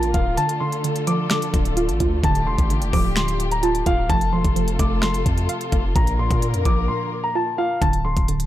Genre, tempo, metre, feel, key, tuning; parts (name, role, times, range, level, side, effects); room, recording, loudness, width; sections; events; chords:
hip hop, trap; 129 BPM; 4/4; half-time; D minor; A4 = 440 Hz
dark concert grand piano; melody; 0.0-8.5 s; F5 to D6; -25 LUFS; left 2 dB; tape echo
soft round pluck; accompaniment; 0.0-8.5 s; Bb2 to F5; -25 LUFS; right 4 dB; chorus
muted studio string section; sustained chords; 0.0-7.8 s; C3 to Bb4; -28 LUFS; left 3 dB
long sustained 808-style bass; bass; 0.0-8.5 s; D1 to Bb2; -23 LUFS; equal
trap drum kit; drums; 0.0-8.5 s; finger snaps, hi-hat, kick drum, snare drum; -22 LUFS; equal; overdrive
little or no reverb; -18 LUFS; side -13 dB against mid
0.0-7.8 A section
kick muted 0.4-1.3; break 6.9-7.8
0.4 Dm; 4.1 F; 6.0 Bb; 7.8 D5